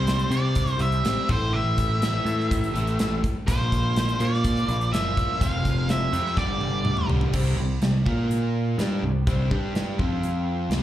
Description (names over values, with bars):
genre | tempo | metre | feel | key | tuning
classic rock | 124 BPM | 4/4 | straight | unclear | A4 = 440 Hz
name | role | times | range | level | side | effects
octave-fuzz lead guitar | melody | 0.0-7.1 s | C5 to F5 | -28 LUFS | equal | distortion, slapback echo
biting overdriven guitar | riff | 0.0-10.8 s | F2 to Bb4 | -29 LUFS | equal | spring reverb
growling picked electric bass | bass | 0.0-10.8 s | F1 to C3 | -25 LUFS | equal | overdrive
gated 80s drum kit | drums | 0.1-10.8 s | crash cymbal, hi-hat, kick drum, snare drum, toms | -27 LUFS | equal | none
room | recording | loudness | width
little or no reverb | live gig heard through the venue's PA, club reverb | -21 LUFS | side -13 dB against mid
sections
0.0-7.3 A section; 7.3-10.8 B section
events
drum fill 6.4-7.3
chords
0.0 C; 1.3 A5; 3.5 Bb; 5.4 F5; 6.4 Gsus4; 7.3 C5; 8.1 Bb5; 8.8 C5; 9.5 G5; 10.0 F5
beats
0.07 0.56 1.05 | 1.54 2.02 2.51 2.99 | 3.48 3.96 4.45 4.93 | 5.41 5.90 6.38 6.86 | 7.34 7.82 8.30 8.79 | 9.27 9.75 10.23 10.71